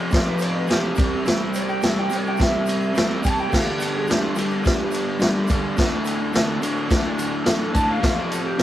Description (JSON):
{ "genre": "garage rock duo or trio", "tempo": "106 BPM", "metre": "4/4", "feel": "straight", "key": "unclear", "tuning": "A4 = 440 Hz", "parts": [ { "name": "crunchy overdriven guitar", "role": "riff", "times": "0.0-8.6 s", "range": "D2 to C4", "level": "-23 LUFS", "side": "equal", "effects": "none" }, { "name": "electric slide guitar", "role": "melody", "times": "0.1-8.6 s", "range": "F4 to A5", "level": "-27 LUFS", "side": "equal", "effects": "none" }, { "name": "vintage drum kit", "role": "drums", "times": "0.1-8.6 s", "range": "crash cymbal, kick drum, ride cymbal, snare drum", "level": "-22 LUFS", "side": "equal", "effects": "none" }, { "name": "egg shaker", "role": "percussion", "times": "0.1-8.6 s", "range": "none", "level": "-42 LUFS", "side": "right 4 dB", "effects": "none" }, { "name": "combo organ", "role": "sustained chords", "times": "3.5-8.6 s", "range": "C4 to B4", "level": "-36 LUFS", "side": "right 1 dB", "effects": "none" } ], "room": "moderate small room reverb, RT60 0.5 s", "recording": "rough rehearsal-room recording", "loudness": "-19 LUFS", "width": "side -12 dB against mid", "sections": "0.0-8.6 A section", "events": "electric slide guitar solo 0.0-8.6", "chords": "0.0 F5; 1.0 C; 3.5 G; 5.8 D; 8.0 F" }